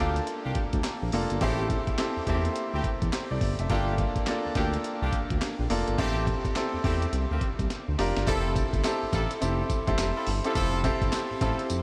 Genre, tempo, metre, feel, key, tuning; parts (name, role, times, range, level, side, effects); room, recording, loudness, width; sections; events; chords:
R&B, new jack swing; 105 BPM; 4/4; swing 62% on 16ths; F major; A4 = 440 Hz
clear concert grand piano; accompaniment; 0.0-11.8 s; Bb3 to E5; -32 LUFS; equal
clear horn section; stabs; 0.0-11.6 s; A3 to A4; -38 LUFS; equal; tape echo
smooth synth bass; bass; 0.0-11.8 s; F1 to E2; -32 LUFS; equal
breakbeat sampler-style drum kit; drums; 0.2-11.8 s; handclaps, hi-hat, kick drum, snare drum, tambourine; -33 LUFS; equal
wet huge ambient reverb, RT60 7.2 s; dreamy mix soaked in reverb; -28 LUFS; mono
0.0-8.3 A section; 8.3-11.8 B section
drum fill 7.7-8.3
0.0 Gm7; 1.4 Am7; 3.7 Gm7; 6.0 Am7; 7.1 C7sus4; 8.3 Fmaj7